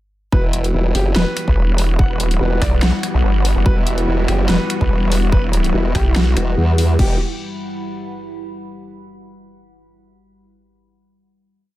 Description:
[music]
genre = heavy wobble dubstep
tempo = 144 BPM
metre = 4/4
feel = swing 53% on 16ths, half-time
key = E minor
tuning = A4 = 439 Hz
[part]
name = clear concert grand piano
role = melody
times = 0.3-7.1 s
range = E4 to F#5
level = -27 LUFS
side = equal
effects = tape echo
[part]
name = supersaw chords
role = sustained chords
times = 0.3-7.2 s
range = E3 to G4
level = -25 LUFS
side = right 1 dB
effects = lush chorus, sidechain pumping, low-pass filter
[part]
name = formant-sweep wobble bass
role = bass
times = 0.3-7.2 s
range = E1 to E2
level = -17 LUFS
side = equal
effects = chorus, overdrive
[part]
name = electronic kick drum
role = drums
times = 0.3-7.1 s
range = none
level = -18 LUFS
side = equal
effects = none
[part]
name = deep dark ambient pad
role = texture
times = 1.3-8.6 s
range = G3 to B5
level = -27 LUFS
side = left 1 dB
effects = chorus, built-in reverb, sidechain pumping
[part]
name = dubstep drum kit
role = drums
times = 0.5-7.1 s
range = crash cymbal, finger snaps, hi-hat, snare drum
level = -22 LUFS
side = left 1 dB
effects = none
[part]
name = vowel-sweep wobble bass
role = bass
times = 1.5-6.3 s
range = E1 to B1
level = -16 LUFS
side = equal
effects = chorus, overdrive
[sound]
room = little or no reverb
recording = none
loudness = -14 LUFS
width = side -16 dB against mid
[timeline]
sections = 0.3-7.0 drop; 7.0-8.7 final chord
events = drop 0.3-7.0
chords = 0.3 Emadd9

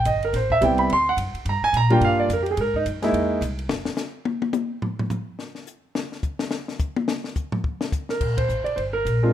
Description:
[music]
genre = jazz piano trio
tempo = 214 BPM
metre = 4/4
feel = swing 60% on 8ths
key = unclear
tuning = A4 = 440 Hz
[part]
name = warm concert grand piano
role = melody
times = 0.0-3.4, 8.1-9.3 s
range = G3 to C6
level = -20 LUFS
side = right 2 dB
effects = none
[part]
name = upright bass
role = bass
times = 0.0-3.9, 8.2-9.3 s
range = F1 to Bb2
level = -25 LUFS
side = equal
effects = none
[part]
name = compact cocktail drum kit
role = drums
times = 0.1-9.1 s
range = crash cymbal, hi-hat, kick drum, ride cymbal, snare drum, toms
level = -28 LUFS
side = left 3 dB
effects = none
[sound]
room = light reverb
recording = minimal, uncompressed stereo recording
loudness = -21 LUFS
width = side -11 dB against mid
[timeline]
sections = 0.0-8.2 A section; 8.2-9.3 B section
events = grand piano solo 0.0-8.2; drum solo 3.7-8.2; band accent 8.4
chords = 0.3 Am7; 0.9 D; 1.5 Gm7; 2.6 C7alt; 3.7 N.C.; 8.2 Bb6

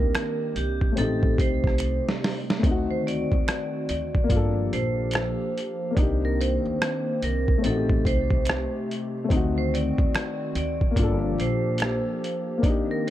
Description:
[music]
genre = lo-fi hip hop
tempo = 72 BPM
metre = 4/4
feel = swing 63% on 16ths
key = G minor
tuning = A4 = 439 Hz
[part]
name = vibraphone with hard mallets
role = melody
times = 0.0-13.1 s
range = G4 to D5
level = -30 LUFS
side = right 2 dB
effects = low-pass filter, tape echo
[part]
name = dark upright piano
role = accompaniment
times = 0.0-13.1 s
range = A3 to A4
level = -28 LUFS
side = left 4 dB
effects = cassette tape, low-pass filter
[part]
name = hollow soft pad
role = sustained chords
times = 0.0-13.1 s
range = C3 to G4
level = -33 LUFS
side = right 2 dB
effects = chorus, low-pass filter
[part]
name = upright bass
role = bass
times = 0.0-12.0 s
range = G1 to Eb2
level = -28 LUFS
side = equal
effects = none
[part]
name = finger snap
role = percussion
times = 0.1-12.0 s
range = none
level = -39 LUFS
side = right 10 dB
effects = none
[part]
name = boom bap sampler-style drum kit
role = drums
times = 0.2-13.1 s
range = hi-hat, kick drum, rim click, snare drum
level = -25 LUFS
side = equal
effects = none
[sound]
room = small room ambience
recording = dark, warm production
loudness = -22 LUFS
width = side -13 dB against mid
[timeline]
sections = 0.0-13.1 A section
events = drum fill 1.8-2.6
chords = 0.0 Cm9; 1.0 Am7b5; 2.6 D7b9; 4.3 Gm7; 6.0 Cm9; 7.6 Am7b5; 9.3 D7b9; 11.0 Gm7

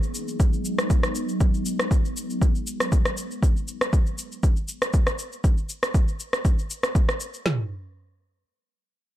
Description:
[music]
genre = afro house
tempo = 119 BPM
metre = 4/4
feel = swing 54% on 16ths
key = G# minor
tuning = A4 = 440 Hz
[part]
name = ethereal airy pad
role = sustained chords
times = 0.0-3.4 s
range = F#3 to G#4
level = -30 LUFS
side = equal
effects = ensemble chorus, built-in reverb, sidechain pumping
[part]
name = electronic shaker and rim click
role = drums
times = 0.0-7.4 s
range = none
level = -28 LUFS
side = equal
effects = none
[part]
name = deep house drum kit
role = drums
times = 0.4-7.6 s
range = kick drum, snare drum, toms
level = -21 LUFS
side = equal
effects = none
[sound]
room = light reverb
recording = dark, warm production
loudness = -22 LUFS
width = side -13 dB against mid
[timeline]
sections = 0.0-7.5 A section; 7.5-9.2 B section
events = none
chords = 0.0 G#m7; 3.4 N.C.

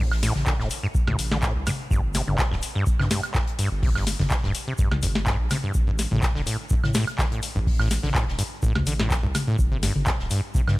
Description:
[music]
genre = acid house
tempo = 125 BPM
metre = 4/4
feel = straight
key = A minor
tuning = A4 = 442 Hz
[part]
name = acid bass, saw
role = riff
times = 0.0-10.8 s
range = F2 to D3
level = -28 LUFS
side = equal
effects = overdrive, cassette tape, sidechain pumping, tape echo
[part]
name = saturated sub bass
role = bass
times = 0.0-10.8 s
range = D1 to A2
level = -28 LUFS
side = equal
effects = tube saturation, sidechain pumping
[part]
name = booming analog drum machine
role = drums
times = 0.1-10.8 s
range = handclaps, hi-hat, snare drum, toms, woodblock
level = -27 LUFS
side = left 1 dB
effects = studio ambience
[part]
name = warm soul drum kit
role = drums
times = 0.1-10.8 s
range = hi-hat, shaker, snare drum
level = -38 LUFS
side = left 1 dB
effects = sidechain pumping on hats, high-pass filter on hats, studio ambience, high-pass filter on snare, sidechain pumping on perc, high-pass filter on perc, high-pass filter on room
[part]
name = electronic kick drum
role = drums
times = 0.5-10.6 s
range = none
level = -24 LUFS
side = equal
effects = studio ambience
[sound]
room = little or no reverb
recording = none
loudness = -21 LUFS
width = side -19 dB against mid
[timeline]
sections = 0.0-10.8 A section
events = none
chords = none

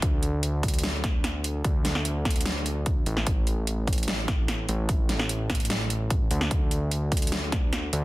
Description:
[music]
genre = future bass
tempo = 148 BPM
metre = 4/4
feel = half-time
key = unclear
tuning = A4 = 440 Hz
[part]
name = fat analog bass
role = bass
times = 0.0-8.0 s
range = A1 to D2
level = -28 LUFS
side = equal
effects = sidechain pumping
[part]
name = dubstep drum kit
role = drums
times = 0.0-8.0 s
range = hi-hat, snare drum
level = -29 LUFS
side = equal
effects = none
[part]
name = electronic kick drum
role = drums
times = 0.0-7.6 s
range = none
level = -26 LUFS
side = equal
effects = none
[sound]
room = digital ambience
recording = dense, heavily limited modern master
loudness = -24 LUFS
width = side -18 dB against mid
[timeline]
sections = 0.0-8.0 A section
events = none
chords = none

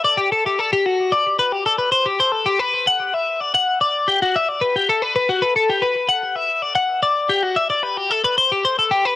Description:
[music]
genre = rock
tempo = 75 BPM (dotted quarters)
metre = 6/8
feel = straight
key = unclear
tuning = A4 = 440 Hz
[part]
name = twelve-string electric guitar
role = solo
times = 0.0-9.2 s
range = F#4 to F#5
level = -16 LUFS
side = left 2 dB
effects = cassette tape, analog delay
[sound]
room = light reverb, digital ambience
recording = home recording on cassette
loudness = -16 LUFS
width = side -15 dB against mid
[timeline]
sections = 0.0-1.4 A section; 1.4-9.2 B section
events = none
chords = none

